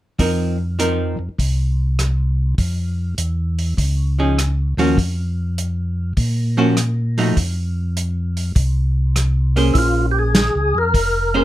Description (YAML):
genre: soul jazz organ trio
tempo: 100 BPM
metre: 4/4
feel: swing 68% on 8ths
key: Bb minor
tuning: A4 = 439 Hz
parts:
  - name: archtop guitar, miked and amplified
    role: accompaniment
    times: 0.2-11.4 s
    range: F3 to C5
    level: -18 LUFS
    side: right 1 dB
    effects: none
  - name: mellow tonewheel organ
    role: bass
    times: 0.2-11.4 s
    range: F1 to Bb2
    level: -19 LUFS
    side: equal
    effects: slow rotary speaker
  - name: warm soul drum kit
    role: drums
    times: 0.2-11.1 s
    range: hi-hat, kick drum, rim click, snare drum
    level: -20 LUFS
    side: equal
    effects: none
  - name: percussive tonewheel organ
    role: melody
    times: 9.7-11.4 s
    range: E4 to Bb4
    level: -18 LUFS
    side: equal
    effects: slow rotary speaker, overdrive, chorus vibrato
room: light reverb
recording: none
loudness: -16 LUFS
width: side -14 dB against mid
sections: 0.2-9.8 A section; 9.8-11.4 B section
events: none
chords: 0.2 F7sus4; 2.6 Bbm (rootless); 5.0 Ebmadd9/F (rootless); 7.4 F5; 9.8 Bbm9